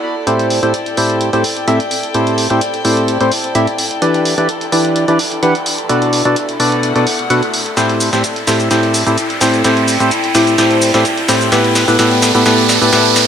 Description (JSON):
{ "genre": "piano house", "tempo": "128 BPM", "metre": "4/4", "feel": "straight", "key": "A dorian", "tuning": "A4 = 440 Hz", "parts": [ { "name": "clear studio string section", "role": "texture", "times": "0.0-13.3 s", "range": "A3 to G5", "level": "-21 LUFS", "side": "left 2 dB", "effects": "none" }, { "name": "percussive organ stab", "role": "riff", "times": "0.3-13.3 s", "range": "A2 to F#5", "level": "-13 LUFS", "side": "equal", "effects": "lush chorus, digital delay" }, { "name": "punchy analog drum machine", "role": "drums", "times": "0.3-13.3 s", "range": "hi-hat, shaker, snare drum", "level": "-18 LUFS", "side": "equal", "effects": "high-pass filter on snare, high-pass filter on hats, high-pass filter on perc, high-pass filter on room" }, { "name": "riser", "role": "sound effects", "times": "1.9-13.3 s", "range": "none", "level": "-20 LUFS", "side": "right 4 dB", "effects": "none" } ], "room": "moderate lush hall reverb, RT60 2.2 s", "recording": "none", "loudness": "-11 LUFS", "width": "side -8 dB against mid", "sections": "0.3-13.3 A section", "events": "build-up 0.3-13.3; riser 1.9-13.3; drum fill 7.8-13.3", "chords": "0.3 Am7; 4.0 Em7; 5.9 Bm7; 7.8 Am7; 11.5 Em7" }